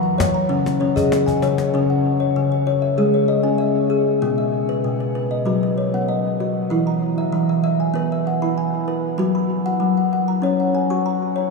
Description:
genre	world meditative, meditative tuned percussion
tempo	97 BPM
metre	4/4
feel	straight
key	C# dorian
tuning	A4 = 440 Hz
part	kalimba	arpeggios	0.0-11.5 s	B2 to C#6	-17 LUFS	left 2 dB	tape echo, shimmer reverb
part	cajon	percussion	0.1-1.7 s	none	-29 LUFS	left 4 dB	none
room	wet cathedral reverb, RT60 6.2 s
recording	in a vast, echoing space, studio reverb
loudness	-17 LUFS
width	side -3 dB against mid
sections	0.0-1.7 A section; 1.7-11.5 B section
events	drum fill 1.3-1.7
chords	0.0 F#; 0.5 C#5; 1.7 C#m; 4.2 B; 6.7 E; 9.2 F#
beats	0.50 1.12 | 1.74 2.36 2.98 3.60 | 4.22 4.84 5.46 6.08 | 6.70 7.32 7.94 8.56 | 9.18 9.80 10.43 11.05

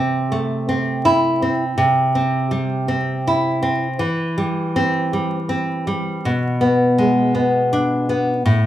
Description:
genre	romantic piece for solo classical guitar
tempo	81 BPM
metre	3/4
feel	rubato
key	unclear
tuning	A4 = 440 Hz
part	nylon-string guitar	solo	0.0-8.7 s	A2 to E4	-16 LUFS	equal	none
room	moderate large studio reverb, RT60 1.0 s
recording	band playing live in one room, vinyl crackle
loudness	-17 LUFS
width	side -12 dB against mid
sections	0.0-8.7 A section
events	none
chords	0.0 Am/C; 1.8 C; 4.0 C/E; 6.2 Bm6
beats	0.32 1.05 | 1.78 2.52 3.26 | 4.01 4.76 5.50 | 6.25 6.98 7.72 | 8.47

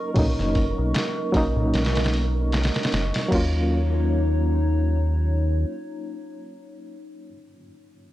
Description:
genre	trip hop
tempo	76 BPM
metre	4/4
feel	swing 55% on 16ths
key	Eb minor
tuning	A4 = 442 Hz
part	reed electric piano	accompaniment	0.0-8.1 s	F#3 to F4	-27 LUFS	equal	tremolo, vintage 12-bit sampler grit, tape echo
part	warbly tape-like pad	sustained chords	0.0-7.2 s	Eb4 to Db6	-31 LUFS	left 1 dB	chorus, built-in reverb, vintage 12-bit sampler grit
part	flickering grainy texture	texture	0.0-3.3 s	Bb4	-41 LUFS	right 3 dB	none
part	round analog bass	bass	0.2-5.7 s	F#1 to Eb2	-22 LUFS	equal	none
part	trip hop sampler-style drum kit	drums	0.2-3.5 s	crash cymbal, hi-hat, kick drum, snare drum	-25 LUFS	equal	none
part	darbuka	percussion	0.2-2.7 s	none	-30 LUFS	left 1 dB	none
room	digital ambience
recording	dry, gritty hardware recording, cassette tape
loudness	-20 LUFS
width	side -15 dB against mid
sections	0.0-3.3 A section; 3.3-6.5 B section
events	none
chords	0.0 Bmaj9; 3.3 Ebm7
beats	| 0.16 0.95 1.74 2.53 | 3.32 4.11 4.90 5.69

